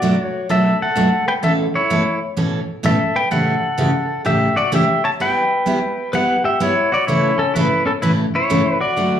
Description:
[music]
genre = country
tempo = 128 BPM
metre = 4/4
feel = swing 66% on 8ths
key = unclear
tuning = A4 = 441 Hz
[part]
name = pedal steel guitar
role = melody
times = 0.0-9.2 s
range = C#4 to A5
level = -18 LUFS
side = left 1 dB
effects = slapback echo
[part]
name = picked steel-string acoustic guitar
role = accompaniment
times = 0.0-9.2 s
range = A2 to A4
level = -19 LUFS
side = right 1 dB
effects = slapback echo
[sound]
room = moderate plate reverb, RT60 2.7 s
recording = live gig heard through the venue's PA, club reverb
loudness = -15 LUFS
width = side -9 dB against mid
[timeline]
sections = 0.0-9.2 A section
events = none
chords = 0.0 Bm7; 1.4 Aadd9; 3.3 A7; 5.2 Em/G; 7.1 A

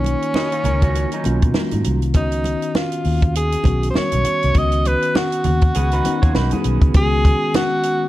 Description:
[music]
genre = lush 1970s-style soul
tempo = 100 BPM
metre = 4/4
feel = swing 58% on 16ths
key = unclear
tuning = A4 = 441 Hz
[part]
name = breathy tenor saxophone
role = melody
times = 0.0-8.1 s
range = C#4 to D#5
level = -21 LUFS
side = equal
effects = none
[part]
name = mellow tine electric piano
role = accompaniment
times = 0.0-8.1 s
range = D#3 to F#4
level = -23 LUFS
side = left 2 dB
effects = slow stereo tremolo
[part]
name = vintage muted fingered electric bass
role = bass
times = 0.0-7.3 s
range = B1 to B2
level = -20 LUFS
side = equal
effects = none
[part]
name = congas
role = percussion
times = 0.0-7.7 s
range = none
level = -28 LUFS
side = right 3 dB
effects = none
[part]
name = compact cocktail drum kit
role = drums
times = 0.1-8.0 s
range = hi-hat, kick drum, snare drum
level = -18 LUFS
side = equal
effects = none
[part]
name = electric guitar through a small old amp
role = riff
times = 0.4-2.0, 5.8-6.9 s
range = F#3 to D#5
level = -27 LUFS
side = right 4 dB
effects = none
[sound]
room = small room ambience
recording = dark, warm production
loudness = -15 LUFS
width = side -15 dB against mid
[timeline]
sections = 0.0-6.9 A section; 6.9-8.1 B section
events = none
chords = 0.0 Bmaj9#11; 2.2 C#9sus4

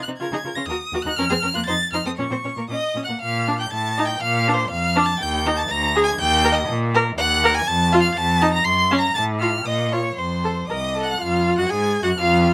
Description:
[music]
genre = quick classical-period movement for string quartet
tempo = 121 BPM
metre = 2/4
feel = straight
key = Bb minor, Bb major from 3.2 s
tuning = A4 = 438 Hz
[part]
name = warm violin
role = melody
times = 0.0-12.5 s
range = C6 to C7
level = -28 LUFS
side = equal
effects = none
[part]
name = rich violin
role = second line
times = 0.1-12.5 s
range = Eb4 to C6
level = -26 LUFS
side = equal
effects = none
[part]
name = rich viola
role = accompaniment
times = 0.1-12.5 s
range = Bb3 to Bb4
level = -24 LUFS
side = equal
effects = none
[part]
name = rich cello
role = bass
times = 0.1-12.5 s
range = C2 to Db3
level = -27 LUFS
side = equal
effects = none
[sound]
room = light reverb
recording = none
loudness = -21 LUFS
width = mono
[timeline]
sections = 0.0-3.2 A section; 3.2-11.2 B section; 11.2-12.5 C section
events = none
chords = 0.2 Bbm/Db; 0.7 Ebm; 1.2 Bbm/F; 1.7 F7; 2.2 Bbm; 3.2 Bb; 3.7 Gsus2/A; 4.2 Bb; 5.2 Eb; 5.7 Bb7/D; 6.2 Eb5; 7.7 F; 8.2 F7; 8.7 Gb5; 9.2 F/A; 9.7 Bbm; 10.2 F; 11.2 N.C.; 11.7 Gbsus2

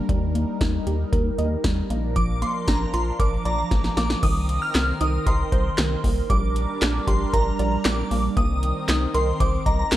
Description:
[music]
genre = synth-pop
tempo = 116 BPM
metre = 4/4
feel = straight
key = C minor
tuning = A4 = 439 Hz
[part]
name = phased analog pad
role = sustained chords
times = 0.0-10.0 s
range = Eb3 to Bb4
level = -29 LUFS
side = right 2 dB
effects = phaser, chorus
[part]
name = soft round pluck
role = arpeggios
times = 0.1-10.0 s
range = Eb3 to Eb5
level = -29 LUFS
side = right 2 dB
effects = chorus, tape echo
[part]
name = rubbery square bass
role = bass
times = 0.1-10.0 s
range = Bb1 to Eb2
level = -25 LUFS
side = equal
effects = none
[part]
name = electro analog drum machine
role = drums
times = 0.1-10.0 s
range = crash cymbal, handclaps, hi-hat, kick drum, snare drum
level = -24 LUFS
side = equal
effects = overdrive
[part]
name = shimmering bell with halo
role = melody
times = 2.2-10.0 s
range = Bb5 to F6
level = -27 LUFS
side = equal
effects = ensemble chorus
[sound]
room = light reverb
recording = dark, warm production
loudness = -20 LUFS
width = side -14 dB against mid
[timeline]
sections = 0.0-4.2 A section; 4.2-10.0 B section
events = drum fill 3.7-4.2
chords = 0.1 Eb; 1.9 Bb; 4.2 Cm7; 6.3 Bb6; 8.4 Cm7

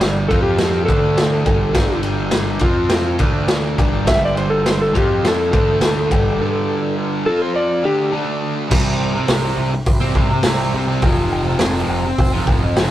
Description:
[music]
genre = garage rock duo or trio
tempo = 104 BPM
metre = 4/4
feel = straight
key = unclear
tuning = A4 = 441 Hz
[part]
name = electric slide guitar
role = melody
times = 0.0-8.1 s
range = G4 to E5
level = -19 LUFS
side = equal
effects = slapback echo
[part]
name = combo organ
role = sustained chords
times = 0.0-12.9 s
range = C4 to F5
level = -34 LUFS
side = left 1 dB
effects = none
[part]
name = fuzz guitar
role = riff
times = 0.0-12.9 s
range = F2 to F4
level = -20 LUFS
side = equal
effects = distortion
[part]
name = growling picked electric bass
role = bass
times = 0.0-12.9 s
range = F1 to F2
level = -23 LUFS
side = equal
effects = overdrive, tube saturation
[part]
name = raw garage drum kit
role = drums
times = 0.0-12.9 s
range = crash cymbal, hi-hat, kick drum, ride cymbal, snare drum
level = -18 LUFS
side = equal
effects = none
[sound]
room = wet booth ambience, RT60 0.2 s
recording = rough rehearsal-room recording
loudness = -15 LUFS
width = side -13 dB against mid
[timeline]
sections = 0.0-8.7 A section; 8.7-12.9 B section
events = break 6.4-8.7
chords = 0.3 F5; 0.9 D5; 1.5 G5; 2.6 F5; 3.2 D5; 3.8 G5; 4.9 F5; 5.5 D5; 6.1 G5; 7.3 F5; 7.8 G5; 8.1 D5; 8.7 C; 11.0 F

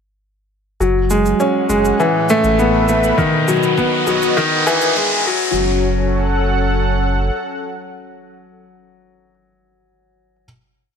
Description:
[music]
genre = piano and strings electronica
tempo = 101 BPM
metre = 4/4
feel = straight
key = F# dorian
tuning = A4 = 439 Hz
[part]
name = lush unison pad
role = sustained chords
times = 0.8-8.7 s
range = A2 to F#5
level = -21 LUFS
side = equal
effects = chorus, sidechain pumping
[part]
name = clear upright piano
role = riff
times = 0.8-10.5 s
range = D#3 to C#4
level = -15 LUFS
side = left 1 dB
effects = ping-pong delay
[part]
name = warm sub bass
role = bass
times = 0.8-7.3 s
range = E1 to B1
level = -20 LUFS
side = right 1 dB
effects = sidechain pumping
[part]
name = shaker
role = drums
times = 0.8-5.1 s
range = none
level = -31 LUFS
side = right 3 dB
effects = high-pass filter on perc, high-pass filter on room
[part]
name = riser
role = sound effects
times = 2.1-5.6 s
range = none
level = -22 LUFS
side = equal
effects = none
[part]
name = electronic kick drum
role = drums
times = 3.2-5.4 s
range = none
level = -26 LUFS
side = equal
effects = none
[sound]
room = moderate lush hall reverb, RT60 1.9 s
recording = high-pass filter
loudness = -13 LUFS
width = side -6 dB against mid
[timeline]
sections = 0.8-5.6 build; 5.6-7.9 final chord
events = build-up 0.8-5.6; filter sweep 0.8-5.6; riser 2.1-5.6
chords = 0.8 F#sus2; 2.0 Asus2; 3.2 B; 4.4 Emaj7; 5.3 F#5; 5.6 F#m

